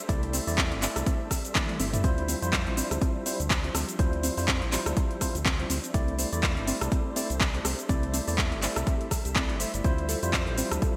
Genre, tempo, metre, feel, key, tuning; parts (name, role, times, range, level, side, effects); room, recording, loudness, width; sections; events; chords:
deep house; 123 BPM; 4/4; swing 57% on 16ths; A4 = 440 Hz
soft string machine; sustained chords; 0.0-11.0 s; F3 to E5; -42 LUFS; equal; ensemble chorus, sidechain pumping
soft round pluck; arpeggios; 0.1-10.9 s; C4 to C5; -40 LUFS; equal; chorus, sidechain pumping, digital delay
tine electric piano; stabs; 0.1-11.0 s; G3 to E5; -36 LUFS; equal; vintage 12-bit sampler grit, digital delay
round analog bass; bass; 0.1-10.8 s; G1 to F2; -34 LUFS; equal; sidechain pumping
deep house drum kit; drums; 0.1-10.9 s; handclaps, hi-hat, rim click, shaker, toms; -32 LUFS; equal; overdrive, gated reverb
electronic kick drum; drums; 0.1-10.9 s; -30 LUFS; equal; overdrive
moderate lush hall reverb, RT60 2.1 s; bright 1980s-style digital production; -28 LUFS; mono
0.0-11.0 A section
drum fill 1.6-2.0
0.0 C69; 2.0 Dm11; 5.9 C69; 9.8 Dm11